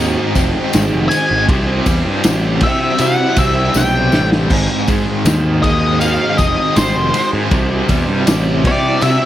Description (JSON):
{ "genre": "psychedelic rock", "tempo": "80 BPM", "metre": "4/4", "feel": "straight", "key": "unclear", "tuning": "A4 = 439 Hz", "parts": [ { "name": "string machine, full ensemble", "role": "sustained chords", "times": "0.0-9.3 s", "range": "C4 to C5", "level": "-25 LUFS", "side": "right 4 dB", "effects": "phaser, ensemble chorus" }, { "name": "overdriven electric guitar", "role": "riff", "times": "0.0-9.3 s", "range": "Ab2 to E4", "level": "-19 LUFS", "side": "left 1 dB", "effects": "tremolo" }, { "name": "fuzz picked electric bass", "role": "bass", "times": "0.0-9.2 s", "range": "F1 to C3", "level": "-18 LUFS", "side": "equal", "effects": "overdrive" }, { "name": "vintage drum kit", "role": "drums", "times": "0.4-9.2 s", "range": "crash cymbal, kick drum, ride cymbal, snare drum", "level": "-17 LUFS", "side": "equal", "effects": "none" }, { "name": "tambourine", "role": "percussion", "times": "0.4-9.2 s", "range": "none", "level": "-31 LUFS", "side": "left 10 dB", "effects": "none" }, { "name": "octave-fuzz lead guitar", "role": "melody", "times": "1.1-9.3 s", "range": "C5 to Ab5", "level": "-19 LUFS", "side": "left 2 dB", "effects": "distortion, tape echo" } ], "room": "little or no reverb", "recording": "none", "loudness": "-12 LUFS", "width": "side -12 dB against mid", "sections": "0.0-9.3 A section", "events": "drum fill 3.7-4.5", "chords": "0.0 Ab; 1.5 C; 4.5 Ab; 7.5 C", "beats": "0.73 | 1.49 2.24 2.99 3.75 | 4.50 5.25 6.01 6.76 | 7.52 8.27 9.02" }